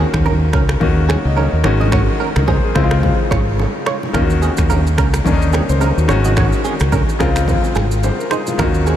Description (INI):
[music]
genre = afrobeats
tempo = 108 BPM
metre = 4/4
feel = swing 58% on 16ths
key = Eb dorian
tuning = A4 = 440 Hz
[part]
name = clear concert grand piano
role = accompaniment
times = 0.0-9.0 s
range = Db3 to Eb5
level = -19 LUFS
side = left 4 dB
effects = none
[part]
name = direct-recorded clean electric guitar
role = riff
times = 0.0-9.0 s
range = C4 to Eb5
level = -23 LUFS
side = right 6 dB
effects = ensemble chorus, diffuse ambient delay
[part]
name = fingered electric bass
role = bass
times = 0.0-8.9 s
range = Ab1 to Eb2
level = -16 LUFS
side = equal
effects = none
[part]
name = deep house drum kit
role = drums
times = 0.1-9.0 s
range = finger snaps, kick drum, rim click, shaker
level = -20 LUFS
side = equal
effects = overdrive
[part]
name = bongos and congas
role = percussion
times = 0.3-8.7 s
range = none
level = -25 LUFS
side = right 2 dB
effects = none
[sound]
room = moderate huge ambient reverb, RT60 7.3 s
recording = dreamy mix soaked in reverb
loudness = -13 LUFS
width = side -11 dB against mid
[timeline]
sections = 0.0-9.0 A section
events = break 0.0-4.1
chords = 0.0 Ebm7; 1.6 Ab7sus4; 2.8 Dbmaj7; 4.1 Ebm7; 6.1 Ab7sus4; 7.2 Dbmaj7